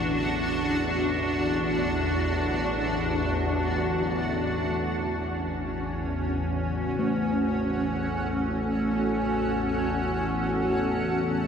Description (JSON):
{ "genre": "dark ambient drone", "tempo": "free time", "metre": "none", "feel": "none", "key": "unclear", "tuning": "A4 = 440 Hz", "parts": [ { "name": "granular cloud pad", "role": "sustained chords", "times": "0.0-11.5 s", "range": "C#4 to A5", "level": "-27 LUFS", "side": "equal", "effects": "built-in reverb" }, { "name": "quartz singing bowl", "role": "arpeggios", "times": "0.0-11.5 s", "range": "B2 to E4", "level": "-34 LUFS", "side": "left 1 dB", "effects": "tape echo" }, { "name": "bowed-like drone", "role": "drone", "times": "0.0-11.5 s", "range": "A1 to E2", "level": "-29 LUFS", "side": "left 1 dB", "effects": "built-in reverb" } ], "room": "wet huge ambient reverb, RT60 7.2 s", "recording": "none", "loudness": "-24 LUFS", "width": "side -7 dB against mid", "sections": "0.0-4.5 A section; 4.5-11.5 B section", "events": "filter sweep on synth drone 4.5-11.5", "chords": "0.0 D; 4.5 F#m", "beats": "free time" }